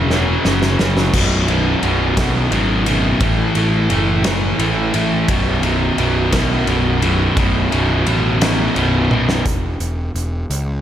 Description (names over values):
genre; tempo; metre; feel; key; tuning
quiet-loud alternative rock; 58 BPM (dotted quarters); 6/8; straight; unclear; A4 = 440 Hz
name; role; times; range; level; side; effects
distorted electric guitar; riff; 0.0-9.4 s; B1 to A3; -17 LUFS; equal; distortion
fuzz picked electric bass; bass; 0.0-10.8 s; B0 to C#2; -20 LUFS; equal; overdrive
loose indie drum kit; drums; 0.1-10.7 s; crash cymbal, hi-hat, kick drum, ride cymbal, snare drum, toms; -21 LUFS; equal; none
room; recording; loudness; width
moderate lush hall reverb, RT60 2.5 s; big arena sound; -14 LUFS; side -10 dB against mid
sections
0.0-9.5 A section; 9.5-10.8 B section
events
drum fill 0.1-1.1, 9.1-9.5; half time 9.5-10.8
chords
0.0 F#5; 1.1 B5; 3.2 A5; 5.3 B5; 9.5 N.C.